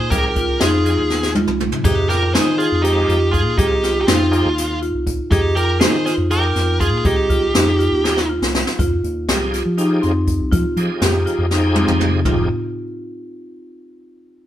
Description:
progressive instrumental, band music in an uneven meter; 242 BPM (eighths); 7/8; straight; F minor; A4 = 440 Hz
high-gain lead guitar; melody; 0.0-8.3 s; F4 to C5; -20 LUFS; right 1 dB; distortion
clean electric guitar; second line; 0.0-8.3 s; C4 to Ab4; -26 LUFS; right 4 dB
fingered electric bass; bass; 0.0-12.5 s; F1 to F3; -21 LUFS; equal
bright tonewheel organ; accompaniment; 0.1-12.5 s; F3 to Ab4; -25 LUFS; equal; chorus vibrato, slow rotary speaker
marimba with medium hard mallets; arpeggios; 0.1-12.5 s; C4 to Ab4; -21 LUFS; left 1 dB
jazz brush drum kit; drums; 0.1-12.4 s; hi-hat, kick drum, snare drum, splash cymbal, toms; -20 LUFS; equal
light reverb; band playing live in one room; -15 LUFS; side -12 dB against mid
0.0-8.8 A section; 8.8-12.3 B section; 12.3-14.0 C section
drum fill 1.1-1.8, 8.0-8.8, 11.5-12.3
0.0 Fm9
| 0.11 0.36 0.61 0.86 1.10 1.35 1.60 | 1.85 2.10 2.34 2.59 2.84 3.09 3.33 | 3.58 3.83 4.08 4.33 4.57 4.82 5.07 | 5.32 5.56 5.81 6.06 6.31 6.55 6.80 | 7.05 7.30 7.55 7.79 8.04 8.29 8.54 | 8.79 9.03 9.28 9.53 9.78 10.03 10.27 | 10.52 10.77 11.02 11.27 11.51 11.76 12.01 | 12.26

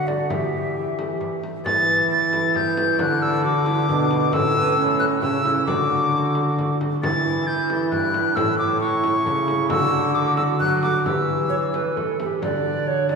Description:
classical, renaissance-style consort dance; 134 BPM; 3/4; straight; E dorian; A4 = 440 Hz
concert flute; melody; 0.0-13.2 s; D5 to A6; -22 LUFS; left 2 dB
tenor recorder; second line; 0.0-13.2 s; C#4 to D5; -25 LUFS; right 6 dB
concert harp; accompaniment; 0.0-13.2 s; G2 to A4; -26 LUFS; left 3 dB
bright trombone; bass; 0.0-13.2 s; G2 to F#3; -28 LUFS; right 1 dB
frame drum; percussion; 0.1-13.2 s; -31 LUFS; left 1 dB
wet church reverb, RT60 2.9 s; recorded in a church or concert hall; -18 LUFS; side -5 dB against mid
0.0-1.7 A section; 1.7-12.4 A section
0.3 Em; 3.0 D; 4.3 A; 5.7 D; 7.0 Em; 8.4 A; 9.7 D; 11.1 Em; 12.4 D
| 0.31 0.76 1.21 | 1.66 2.11 2.56 | 3.00 3.45 3.89 | 4.33 4.78 5.23 | 5.68 6.13 6.58 | 7.03 7.48 7.93 | 8.37 8.82 9.27 | 9.71 10.16 10.61 | 11.06 11.52 11.97 | 12.43 12.87

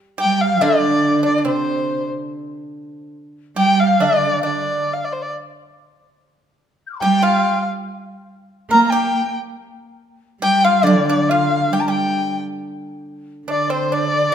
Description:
chinese traditional, Chinese chamber ensemble; 70 BPM; 2/4; rubato; A4 = 441 Hz
dark erhu; melody; 0.2-14.3 s; C5 to Bb5; -18 LUFS; left 1 dB
dark cello; second line; 0.2-14.3 s; C3 to Bb3; -22 LUFS; right 6 dB
mellow hollow dizi; second line; 0.2-14.3 s; C5 to G6; -23 LUFS; left 7 dB
pipa; second line; 0.2-14.3 s; C4 to Bb4; -26 LUFS; right 4 dB
steel-string zither; accompaniment; 0.6-3.1, 10.8-14.3 s; D3; -22 LUFS; equal
moderate recital hall reverb, RT60 1.8 s; minimal, uncompressed stereo recording; -15 LUFS; side -8 dB against mid
0.0-12.6 A section; 12.6-14.3 B section
| 0.62 1.46 | 2.29 3.14 | 4.01 4.87 | 5.74 6.60 | 7.45 8.29 | 9.13 9.98 | 10.85 11.72 | 12.60 13.48 | 14.33

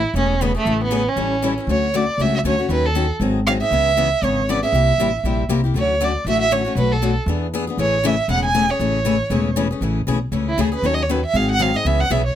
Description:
acoustic string swing (jazz manouche); 236 BPM; 4/4; swing 56% on 8ths; A major; A4 = 440 Hz
warm violin; melody; 0.0-12.4 s; A3 to G#5; -20 LUFS; right 3 dB
upright bass; bass; 0.0-12.3 s; E1 to E2; -22 LUFS; equal
picked steel-string acoustic guitar; accompaniment; 0.2-12.2 s; B2 to A4; -22 LUFS; left 6 dB
little or no reverb; close, detailed microphones; -17 LUFS; side -10 dB against mid
0.0-1.7 A section; 1.7-9.8 B section; 9.8-12.4 C section
violin solo 9.8-12.4
0.0 Amaj7; 1.2 A7; 1.7 Dmaj7; 2.7 D#m7b5; 3.2 G#7; 3.7 C#m7; 4.7 C7; 5.8 Dmaj7; 6.8 Bm7; 7.3 E7; 7.8 Amaj7; 10.8 D#m7b5; 11.3 G#7; 11.9 C#m7
0.15 0.41 | 0.66 0.92 1.17 1.42 | 1.68 1.93 2.19 2.44 | 2.70 2.95 3.21 3.46 | 3.71 3.97 4.22 4.48 | 4.73 4.99 5.24 5.50 | 5.75 6.00 6.26 6.51 | 6.77 7.02 7.28 7.53 | 7.79 8.04 8.29 8.55 | 8.80 9.06 9.31 9.56 | 9.82 10.07 10.33 10.58 | 10.84 11.09 11.34 11.60 | 11.85 12.10

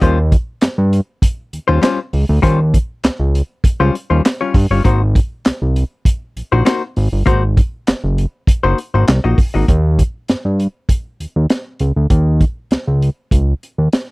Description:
funk; 99 BPM; 4/4; straight; Eb mixolydian; A4 = 440 Hz
hollow-body jazz guitar; accompaniment; 0.0-9.7 s; G3 to Eb5; -16 LUFS; left 4 dB
fat analog bass; bass; 0.0-13.9 s; Gb1 to G2; -14 LUFS; equal
crunchy breakbeat drum kit; drums; 0.0-14.1 s; handclaps, hi-hat, kick drum, snare drum; -14 LUFS; equal
little or no reverb; dry, close 1970s-style studio recording; -13 LUFS; side -23 dB against mid
0.0-9.7 A section; 9.7-14.1 B section
0.0 Eb13; 4.9 Ab9; 9.7 Eb7
| 0.02 0.62 1.23 1.83 | 2.44 3.04 3.64 4.25 | 4.85 5.46 6.06 6.66 | 7.27 7.87 8.47 9.08 | 9.68 10.29 10.89 11.50 | 12.10 12.71 13.31 13.92

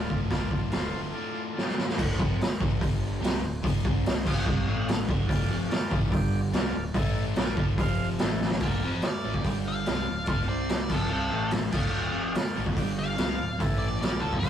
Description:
garage rock duo or trio; 144 BPM; 4/4; straight; D minor; A4 = 440 Hz
combo organ; sustained chords; 0.0-1.8, 5.3-14.5 s; C4 to F5; -37 LUFS; right 2 dB
crunchy overdriven guitar; riff; 0.0-14.5 s; D2 to F4; -32 LUFS; left 1 dB
growling picked electric bass; bass; 0.0-14.5 s; D1 to C2; -35 LUFS; equal; overdrive
raw garage drum kit; drums; 0.1-14.5 s; crash cymbal, hi-hat, kick drum, snare drum; -27 LUFS; equal
octave-fuzz lead guitar; melody; 8.6-14.5 s; F4 to F5; -33 LUFS; equal; distortion, slapback echo
light reverb; rough rehearsal-room recording, warm saturation; -25 LUFS; side -10 dB against mid
0.0-2.0 A section; 2.0-8.6 B section; 8.6-14.5 C section
drum fill 1.6-2.0, 8.4; lead electric guitar solo 8.6-14.5
0.0 Dm; 2.8 G5; 3.2 D5; 3.8 C5; 4.3 Fsus2; 4.7 A5; 5.1 Dm; 6.1 G5; 6.5 Dm; 7.0 A5; 7.4 Dm; 7.8 F5; 8.2 A5; 8.6 Dm; 9.5 G5; 9.9 Dm; 10.5 C5; 10.9 Dm; 11.3 A5; 11.7 Dm; 12.8 G5; 13.2 Dm; 13.6 A5; 14.0 Dm
| 0.31 0.72 1.14 1.55 | 1.97 2.39 2.80 3.22 | 3.63 4.05 4.46 4.88 | 5.29 5.71 6.12 6.54 | 6.96 7.37 7.79 8.20 | 8.62 9.04 9.45 9.87 | 10.28 10.70 11.12 11.53 | 11.95 12.36 12.77 13.19 | 13.60 14.02 14.43

